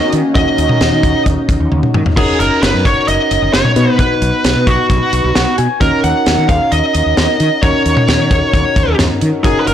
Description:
synth-pop; 132 BPM; 4/4; straight; Eb minor; A4 = 440 Hz
high-gain lead guitar; melody; 0.0-9.7 s; F#4 to Gb5; -15 LUFS; right 1 dB; distortion
soft electric-piano-like synth keys; accompaniment; 0.0-9.7 s; B3 to Ab5; -18 LUFS; left 1 dB; chorus
phased analog pad; sustained chords; 0.0-2.2, 9.4-9.7 s; Eb3 to Bb4; -20 LUFS; left 1 dB; phaser, chorus
mellow fretless electric bass; bass; 0.1-9.7 s; Gb1 to Eb3; -17 LUFS; equal; analog chorus
modern studio drum kit; drums; 0.1-9.7 s; cowbell, crash cymbal, hi-hat, kick drum, snare drum, toms; -15 LUFS; equal
light reverb, small room reverb; blown-out, overdriven recording, overdrive; -10 LUFS; side -10 dB against mid
0.0-2.2 A section; 2.2-9.7 A section
drum fill 1.7-2.2; synth keys fill 5.1-5.8
0.0 Ebm7; 2.2 Gb6; 3.8 B; 5.8 Ebm7
| 0.35 0.81 1.26 1.72 | 2.17 2.63 3.08 3.54 | 3.99 4.45 4.90 5.36 | 5.81 6.26 6.72 7.17 | 7.63 8.08 8.54 8.99 | 9.45

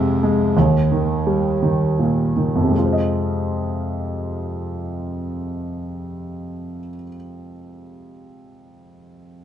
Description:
pop; 52-59 BPM (dotted quarters); 6/8; straight; F minor; A4 = 440 Hz
warm grand piano; accompaniment; 0.0-9.4 s; Eb2 to Eb5; -19 LUFS; equal
wet studio reverb, RT60 0.6 s; band playing live in one room, nothing above 10.7 kHz; -18 LUFS; side -10 dB against mid
0.0-2.7 A section; 2.7-7.4 B section
slowing down 0.0-2.7
0.0 Fm; 0.6 Eb; 2.7 Fm7
| 0.56 1.62 | 2.74 3.90 | 5.05 6.20

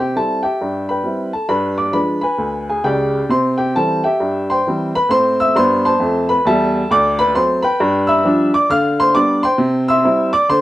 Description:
jazz, stride piano; 134 BPM; 4/4; swing 63% on 8ths; C major; A4 = 437 Hz
warm upright piano; solo; 0.0-10.6 s; Db2 to F6; -14 LUFS; equal
moderate studio reverb, RT60 0.7 s; -14 LUFS; side -15 dB against mid
0.0-10.6 A section
0.0 C; 1.5 G7b9; 3.3 C; 5.1 Am; 6.9 D7; 7.8 G7; 8.7 G7/D; 9.6 C
0.15 0.60 1.05 | 1.50 1.95 2.40 2.85 | 3.30 3.75 4.20 4.65 | 5.10 5.55 6.00 6.45 | 6.90 7.35 7.79 8.24 | 8.69 9.14 9.59 10.04 | 10.49

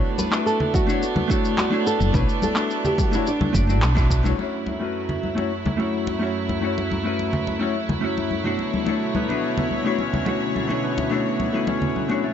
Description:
sunset chillout; 107 BPM; 4/4; straight; B minor; A4 = 440 Hz
flamenco guitar; melody; 0.0-4.1 s; D4 to C#5; -26 LUFS; right 1 dB; ping-pong delay
vintage hollow-body jazz guitar; accompaniment; 0.0-12.3 s; B2 to D5; -25 LUFS; left 2 dB; auto-pan, low-pass filter, ping-pong delay
rich chamber string section; sustained chords; 0.0-12.3 s; F#2 to C#5; -27 LUFS; right 2 dB; vintage 12-bit sampler grit
electronic shaker and handclaps; drums; 0.2-12.3 s; -28 LUFS; equal; low-pass filter on perc, low-pass filter on snare, low-pass filter on room
congas; percussion; 0.2-12.2 s; -28 LUFS; left 2 dB
electronic kick drum; drums; 0.7-4.2 s; -24 LUFS; equal; overdrive
woody fretless electric bass; bass; 2.0-4.3 s; F#1 to B1; -19 LUFS; equal
concert harp; arpeggios; 8.9-12.3 s; A3 to C#4; -28 LUFS; equal; ping-pong delay
light reverb, studio reverb; nothing above 7.7 kHz; -20 LUFS; side -9 dB against mid
0.0-4.4 A section; 4.4-12.3 B section
band accent 3.8; filter sweep on hollow-body jazz guitar 4.4-12.3
0.0 Bm11
0.46 1.02 1.58 | 2.14 2.70 3.26 3.83 | 4.38 4.95 5.51 6.07 | 6.63 7.19 7.75 8.31 | 8.87 9.43 9.99 10.55 | 11.11 11.68 12.24

